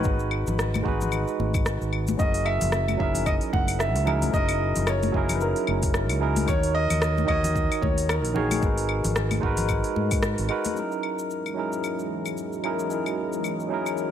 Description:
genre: sunset chillout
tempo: 112 BPM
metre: 4/4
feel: swing 57% on 16ths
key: unclear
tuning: A4 = 440 Hz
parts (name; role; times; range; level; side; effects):
- warm concert grand piano; melody; 0.0-10.2 s; G#4 to F#5; -29 LUFS; equal; tape echo
- barky tine electric piano; accompaniment; 0.0-14.1 s; D#3 to C#5; -28 LUFS; right 1 dB; auto-pan, digital delay
- fingered electric bass; bass; 0.0-10.5 s; F#1 to G#2; -27 LUFS; equal; none
- smooth R&B drum kit; drums; 0.0-14.1 s; claves, hi-hat, rim click, shaker; -31 LUFS; left 2 dB; none
- electronic kick drum; drums; 0.1-10.2 s; none; -27 LUFS; equal; none
- congas; percussion; 0.5-10.8 s; none; -33 LUFS; left 3 dB; none
- lush unison pad; sustained chords; 11.4-14.1 s; E3 to D#5; -33 LUFS; equal; chorus, phaser
room: light reverb, digital ambience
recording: none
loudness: -22 LUFS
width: side -10 dB against mid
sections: 0.0-10.8 A section; 10.8-14.1 B section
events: filter sweep on analog synth pad 10.8-14.1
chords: 0.1 G#m7; 2.2 F#13; 6.5 D#m7; 8.6 G#m9; 10.8 F#13

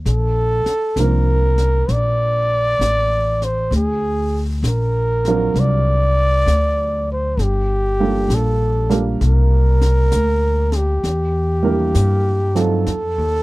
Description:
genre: jazz ballad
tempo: 66 BPM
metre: 4/4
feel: swing 66% on 8ths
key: D minor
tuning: A4 = 438 Hz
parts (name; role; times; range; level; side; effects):
- upright bass; bass; 0.0-13.4 s; G1 to G2; -17 LUFS; equal; none
- breathy trumpet; melody; 0.1-13.4 s; G4 to D5; -20 LUFS; right 1 dB; none
- jazz brush drum kit; drums; 0.1-13.4 s; brushed snare drum, hi-hat, snare drum; -30 LUFS; left 2 dB; none
- dark baby grand piano; accompaniment; 1.0-12.9 s; F3 to Bb4; -23 LUFS; right 4 dB; none
room: studio ambience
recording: dry, close 1970s-style studio recording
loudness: -15 LUFS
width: side -20 dB against mid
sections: 0.0-13.4 A section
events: none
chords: 0.1 Bbmaj9; 3.7 D7alt; 7.4 Gm9; 11.0 Em7b5; 12.9 F7

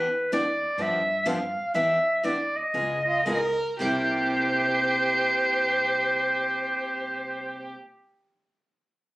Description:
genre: acoustic string swing (jazz manouche)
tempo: 110-129 BPM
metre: 4/4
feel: swing 63% on 8ths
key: C mixolydian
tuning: A4 = 438 Hz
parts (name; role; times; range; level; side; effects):
- clear clarinet; melody; 0.0-7.7 s; B4 to F5; -24 LUFS; equal; none
- picked steel-string acoustic guitar; accompaniment; 0.0-7.8 s; C3 to Ab4; -31 LUFS; equal; none
- upright bass; bass; 0.0-7.7 s; C2 to G2; -42 LUFS; equal; none
- warm violin; second line; 3.1-7.7 s; F4 to Bb4; -29 LUFS; right 1 dB; none
room: moderate studio ambience, RT60 0.5 s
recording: recorded on a phone in the room, club reverb, compression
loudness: -23 LUFS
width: side -20 dB against mid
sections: 0.0-3.8 A section; 3.8-8.2 B section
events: slowing down 0.0-3.8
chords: 0.0 Em7; 0.8 G7; 1.7 Em7; 2.7 Db13; 3.8 C7

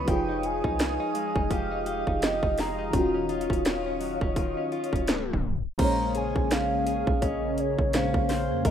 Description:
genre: contemporary R&B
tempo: 84 BPM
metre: 4/4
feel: swing 58% on 16ths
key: unclear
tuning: A4 = 440 Hz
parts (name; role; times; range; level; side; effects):
- mellow horn-like synth lead; melody; 0.0-8.7 s; Db5 to Bb5; -31 LUFS; right 3 dB; chorus, digital delay
- FM electric piano with soft pad layer; accompaniment; 0.0-8.7 s; Ab2 to Db5; -32 LUFS; left 1 dB; chorus
- glassy FM pad; sustained chords; 0.0-8.7 s; Db3 to Eb6; -33 LUFS; left 1 dB; ensemble chorus, built-in reverb, sidechain pumping
- direct-recorded clean electric guitar; arpeggios; 0.0-8.7 s; Db3 to C5; -33 LUFS; left 5 dB; harmonic tremolo, digital delay
- soft 808-style bass; bass; 0.0-8.7 s; Eb1 to F2; -34 LUFS; right 1 dB; none
- trap drum kit; drums; 0.1-8.7 s; crash cymbal, hi-hat, kick drum, snare drum; -28 LUFS; right 1 dB; overdrive
room: light reverb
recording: rough home demo mix, tape stop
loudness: -24 LUFS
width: side -9 dB against mid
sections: 0.0-5.8 A section; 5.8-8.7 B section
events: tape stop 5.1-5.8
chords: 0.1 Fm9; 2.9 Ebm9; 5.8 Bbm9

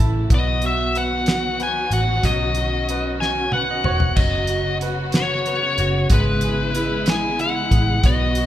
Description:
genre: six-eight pop ballad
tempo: 62 BPM (dotted quarters)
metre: 6/8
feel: straight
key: unclear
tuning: A4 = 440 Hz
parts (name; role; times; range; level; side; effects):
- clear upright piano; accompaniment; 0.0-8.5 s; E3 to A5; -27 LUFS; right 5 dB; none
- dark studio string section; sustained chords; 0.0-8.5 s; C#3 to F#4; -27 LUFS; left 1 dB; none
- vintage muted fingered electric bass; bass; 0.0-8.5 s; E1 to B1; -24 LUFS; equal; none
- smooth overdriven lead guitar; melody; 0.3-8.5 s; B4 to G#5; -22 LUFS; left 3 dB; none
- damped 70s drum kit; drums; 0.3-8.5 s; crash cymbal, hi-hat, kick drum, snare drum, toms; -21 LUFS; equal; none
room: moderate recital hall reverb, RT60 1.4 s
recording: recorded in a church or concert hall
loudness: -17 LUFS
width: side -12 dB against mid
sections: 0.0-4.2 A section; 4.2-8.5 B section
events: upright piano fill 0.0-0.3, 3.2-4.2; drum fill 3.2-4.2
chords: 0.3 B; 4.2 F#sus4; 6.1 E6/G#

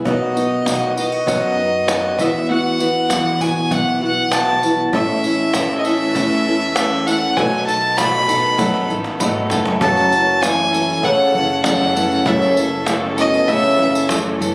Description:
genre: indie folk with a building arrangement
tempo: 98 BPM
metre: 4/4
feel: straight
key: unclear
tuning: A4 = 440 Hz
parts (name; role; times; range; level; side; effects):
- fingerpicked steel-string acoustic guitar; accompaniment; 0.0-4.9 s; E2 to F#4; -27 LUFS; equal; none
- picked old ladder-braced acoustic guitar; accompaniment; 0.0-14.5 s; F#2 to A4; -22 LUFS; equal; none
- clear fiddle; melody; 0.1-14.1 s; D#5 to B5; -21 LUFS; equal; none
- upright bass; bass; 0.1-14.5 s; F#1 to E3; -31 LUFS; equal; none
- cajon; drums; 0.1-14.5 s; none; -27 LUFS; equal; none
- tambourine; percussion; 0.4-14.5 s; none; -32 LUFS; equal; none
- warm upright piano; accompaniment; 4.9-14.5 s; F#1 to B5; -31 LUFS; equal; none
- clear symphonic string section; sustained chords; 4.9-14.5 s; D#3 to A4; -33 LUFS; equal; none
- warm trombone; second line; 9.8-14.1 s; B2 to F#3; -25 LUFS; equal; analog delay
room: little or no reverb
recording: recorded on a phone in the room, club reverb, compression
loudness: -17 LUFS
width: mono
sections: 0.1-9.8 A section; 9.8-14.5 B section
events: drum fill 8.6-9.8; upright piano fill 8.9-9.8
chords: 0.1 B; 2.2 Esus2; 4.9 A; 7.4 B7; 9.8 F#m7

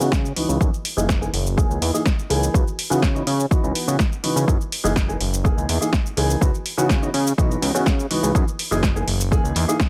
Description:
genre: filtered disco house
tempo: 124 BPM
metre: 4/4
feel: straight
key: F# mixolydian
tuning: A4 = 440 Hz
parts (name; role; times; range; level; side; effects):
- warm grand piano; accompaniment; 0.0-9.7 s; E3 to G#4; -27 LUFS; equal; phaser, vintage 12-bit sampler grit, sidechain pumping, low-pass filter
- fat analog bass; bass; 0.0-9.7 s; F#1 to C#3; -25 LUFS; equal; sidechain pumping, low-pass filter
- punchy analog drum machine; drums; 0.0-9.9 s; hi-hat, shaker, snare drum; -28 LUFS; equal; overdrive, sidechain pumping on cymbals, small room reverb, sidechain pumping on perc, sidechain pumping on hats
- electronic kick drum; drums; 0.1-9.9 s; none; -22 LUFS; equal; overdrive, small room reverb
- tambourine; percussion; 4.5-9.9 s; none; -52 LUFS; equal; none
room: digital ambience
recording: none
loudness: -21 LUFS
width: mono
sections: 0.0-9.9 A section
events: filter sweep 0.0-9.9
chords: 0.0 C#m11; 0.6 F#13; 2.5 C#m11; 4.5 F#13; 6.4 C#m11; 8.3 F#13

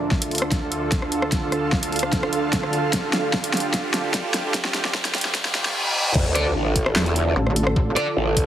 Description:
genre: heavy wobble dubstep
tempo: 149 BPM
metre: 4/4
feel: half-time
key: D minor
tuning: A4 = 440 Hz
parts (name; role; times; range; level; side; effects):
- supersaw pad; sustained chords; 0.0-8.5 s; D2 to A4; -27 LUFS; right 1 dB; sidechain pumping, low-pass filter
- riser, reverse cymbal and sub drop; sound effects; 2.4-7.8 s; none; -29 LUFS; left 1 dB; none
- ethereal airy pad; texture; 0.0-5.8 s; D4 to F5; -28 LUFS; right 3 dB; ensemble chorus, built-in reverb, sidechain pumping
- big-room dance drum kit; drums; 0.1-8.5 s; crash cymbal, handclaps, hi-hat, rim click, snare drum; -24 LUFS; equal; overdrive, studio reverb
- electronic kick drum; drums; 0.1-8.5 s; none; -24 LUFS; equal; overdrive, studio reverb
- growl bass; bass; 6.2-8.5 s; A1 to E2; -21 LUFS; equal; chorus, overdrive
- tight distorted guitar; stabs; 6.4-8.0 s; D4 to D5; -26 LUFS; right 1 dB; distortion, tape echo
- pulsing pluck wobble bass; bass; 7.4-7.9 s; A1; -21 LUFS; equal; chorus, overdrive
room: moderate lush hall reverb, RT60 2.3 s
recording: heavily compressed radio sound, high-pass filter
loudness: -19 LUFS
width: side -11 dB against mid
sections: 0.0-6.2 A section; 6.2-8.5 B section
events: build-up 0.0-6.2; drum fill 0.0-5.8; filter sweep 0.0-6.2; riser 2.4-6.2; reverse cymbal 5.3-6.2; drop 6.2-8.5; impact 6.2-7.8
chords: 0.0 Dm

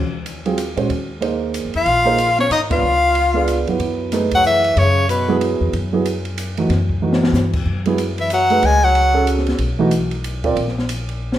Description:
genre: modal jazz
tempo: 186 BPM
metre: 3/4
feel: swing 61% on 8ths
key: Eb dorian, F# dorian from 3.8 s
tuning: A4 = 440 Hz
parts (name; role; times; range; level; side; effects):
- upright bass; bass; 0.0-11.4 s; Bb1 to Bb2; -22 LUFS; left 1 dB; none
- open jazz drum kit; drums; 0.3-11.4 s; crash cymbal, hi-hat, kick drum, ride cymbal, snare drum; -26 LUFS; left 1 dB; none
- dark baby grand piano; accompaniment; 0.5-10.6 s; E3 to D5; -20 LUFS; right 3 dB; none
- bright soprano saxophone; melody; 1.8-5.4, 8.2-9.3 s; B4 to G#5; -16 LUFS; equal; none
- clear tenor saxophone; second line; 1.8-5.4, 8.2-9.3 s; B2 to F4; -22 LUFS; left 5 dB; none
room: moderate recital hall reverb, RT60 1.2 s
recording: recorded in a church or concert hall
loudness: -15 LUFS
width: side -12 dB against mid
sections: 0.0-3.8 A section; 3.8-11.4 B section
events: band accent 2.7; drum fill 7.0-7.3, 11.2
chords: 0.0 Ebsus4; 2.8 Db7b9; 3.8 F#9sus4; 10.6 N.C.

